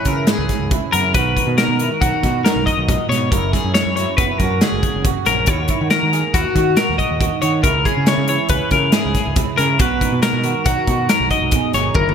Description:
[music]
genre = math rock and midwest emo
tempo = 139 BPM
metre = 5/4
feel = straight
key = unclear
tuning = A4 = 441 Hz
[part]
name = electric guitar at the edge of break-up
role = accompaniment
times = 0.0-12.1 s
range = F#2 to G#4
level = -23 LUFS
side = right 10 dB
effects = analog chorus
[part]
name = twelve-string electric guitar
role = arpeggios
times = 0.0-12.1 s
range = F#4 to D#5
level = -19 LUFS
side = left 5 dB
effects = wide subtle chorus, ping-pong delay
[part]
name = growling fingered electric bass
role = bass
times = 0.1-12.1 s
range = F#1 to D#3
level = -22 LUFS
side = equal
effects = overdrive
[part]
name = modern studio drum kit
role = drums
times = 0.1-12.1 s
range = hi-hat, kick drum, snare drum, toms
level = -19 LUFS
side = equal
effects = none
[sound]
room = moderate lush hall reverb, RT60 1.6 s, studio ambience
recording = bright 1980s-style digital production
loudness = -14 LUFS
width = side -7 dB against mid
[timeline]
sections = 0.0-12.1 A section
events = drum fill 12.0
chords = 0.0 C#m; 1.2 Bmaj7; 3.3 F#7; 5.5 D#m7; 7.6 C#m; 9.8 Bmaj7

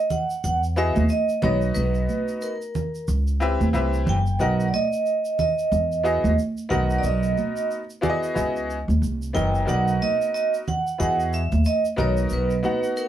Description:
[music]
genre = hip hop, jazz-hop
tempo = 91 BPM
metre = 4/4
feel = swing 59% on 16ths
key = B major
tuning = A4 = 444 Hz
[part]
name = vibraphone with hard mallets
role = melody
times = 0.0-13.1 s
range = A#4 to G5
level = -24 LUFS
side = right 3 dB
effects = none
[part]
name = congas and tube shaker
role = percussion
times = 0.1-13.1 s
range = none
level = -29 LUFS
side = right 4 dB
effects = none
[part]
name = upright bass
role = bass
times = 0.4-12.6 s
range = F#1 to E2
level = -23 LUFS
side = equal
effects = none
[part]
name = bright upright piano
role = accompaniment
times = 0.8-13.1 s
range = F#3 to F#5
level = -26 LUFS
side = left 2 dB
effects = none
[sound]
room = little or no reverb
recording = dry, gritty hardware recording, transformer saturation, small room ambience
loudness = -20 LUFS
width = side -11 dB against mid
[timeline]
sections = 0.0-13.1 A section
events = none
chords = 0.4 Emaj9; 1.4 Bmaj7; 3.1 C#m9b5; 3.7 Cmaj7; 4.4 Bmaj7; 5.7 Emaj9; 6.7 Bmaj7; 8.4 F#13sus4/C#; 9.0 C5; 9.7 Bmaj7; 11.0 Emaj9; 12.0 Bmaj7

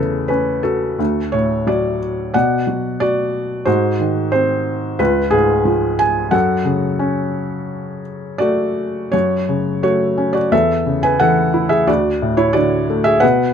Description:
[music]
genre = classical, lyrical solo piano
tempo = 89 BPM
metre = 4/4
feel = rubato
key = F# minor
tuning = A4 = 442 Hz
[part]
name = felt-muted upright piano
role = solo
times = 0.0-13.5 s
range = C#2 to G#5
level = -15 LUFS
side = equal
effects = none
[sound]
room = little or no reverb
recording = close, detailed microphones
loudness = -15 LUFS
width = side -7 dB against mid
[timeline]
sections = 0.0-9.1 A section; 9.1-13.5 B section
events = none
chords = 0.0 A69/E; 1.0 D; 2.3 Bm; 3.7 G#7; 5.0 C#; 6.3 F#m; 10.5 A/E; 11.9 D

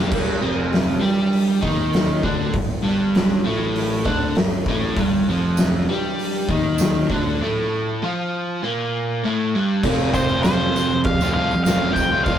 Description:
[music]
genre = garage rock duo or trio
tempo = 99 BPM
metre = 4/4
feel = straight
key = G minor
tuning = A4 = 441 Hz
[part]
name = crunchy overdriven guitar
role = riff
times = 0.0-12.4 s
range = F2 to G4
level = -20 LUFS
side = right 1 dB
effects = none
[part]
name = overdriven picked electric bass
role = bass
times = 0.0-12.4 s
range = F1 to G2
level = -28 LUFS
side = equal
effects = none
[part]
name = oversized low-tuned drum kit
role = drums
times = 0.1-12.4 s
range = crash cymbal, hi-hat, kick drum, snare drum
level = -22 LUFS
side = equal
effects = none
[part]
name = tambourine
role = percussion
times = 5.6-12.3 s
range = none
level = -37 LUFS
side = right 5 dB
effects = none
[part]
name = octave-fuzz lead guitar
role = melody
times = 10.1-12.4 s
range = C5 to G5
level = -21 LUFS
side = left 1 dB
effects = distortion
[sound]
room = moderate small room reverb, RT60 0.5 s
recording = rough rehearsal-room recording, tube saturation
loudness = -18 LUFS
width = side -10 dB against mid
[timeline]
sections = 0.1-9.8 A section; 9.8-12.4 B section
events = break 7.4-9.8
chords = 0.1 Gm; 9.8 F

